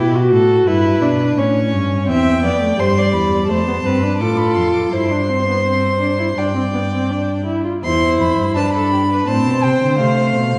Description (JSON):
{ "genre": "classical, baroque-style fugue for string quartet", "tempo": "84 BPM", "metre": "4/4", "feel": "straight", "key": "C major", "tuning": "A4 = 441 Hz", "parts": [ { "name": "warm violin", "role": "second line", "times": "0.0-10.6 s", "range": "G4 to E5", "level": "-23 LUFS", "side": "equal", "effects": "none" }, { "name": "warm viola", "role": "accompaniment", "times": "0.0-10.6 s", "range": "G3 to F#4", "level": "-20 LUFS", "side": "equal", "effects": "none" }, { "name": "dark cello", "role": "bass", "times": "0.0-10.6 s", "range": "E2 to D3", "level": "-22 LUFS", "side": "equal", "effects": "none" }, { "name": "dark violin", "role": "melody", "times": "2.1-10.6 s", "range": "F5 to D6", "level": "-25 LUFS", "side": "equal", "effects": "none" } ], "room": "wet scoring stage reverb, RT60 1.5 s", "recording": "heard from further back in the room", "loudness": "-16 LUFS", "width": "mono", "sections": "0.0-7.8 A section; 7.8-10.6 B section", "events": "none", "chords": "0.0 G; 0.7 Em/G; 2.1 C/E; 3.5 Dm7/F; 4.9 Gsus4; 6.4 G5; 7.8 C/E; 9.3 F/A", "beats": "0.68 1.38 | 2.09 2.79 3.50 4.21 | 4.93 5.66 6.38 7.11 | 7.84 8.57 9.28 10.00" }